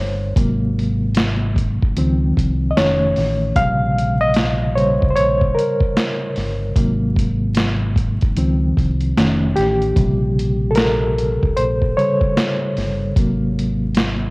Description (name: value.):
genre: lo-fi hip hop.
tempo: 75 BPM.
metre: 4/4.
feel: swing 63% on 16ths.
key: Bb dorian.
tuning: A4 = 440 Hz.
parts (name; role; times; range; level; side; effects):
barky reed electric piano; accompaniment; 0.0-14.3 s; C3 to F5; -18 LUFS; equal; overdrive, fast tremolo, cassette tape.
deep dub fingered electric bass; bass; 0.0-14.3 s; F1 to Db2; -21 LUFS; equal; none.
boom bap sampler-style drum kit; drums; 0.4-14.2 s; hi-hat, kick drum, snare drum; -19 LUFS; equal; cassette tape.
room: light reverb.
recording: home recording on cassette, vinyl crackle.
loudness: -15 LUFS.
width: side -26 dB against mid.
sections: 0.0-14.3 A section.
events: reed electric piano solo 0.0-14.3.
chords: 0.4 Ab9; 2.0 Dbmaj9; 2.8 F7b13; 3.6 Bbm69; 6.8 Ab9; 8.4 Dbmaj9; 9.2 F7b13; 10.0 Bbm69; 13.2 Ab9.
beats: | 0.36 1.16 1.96 2.76 | 3.56 4.36 5.16 5.96 | 6.76 7.56 8.36 9.16 | 9.96 10.76 11.56 12.36 | 13.16 13.96.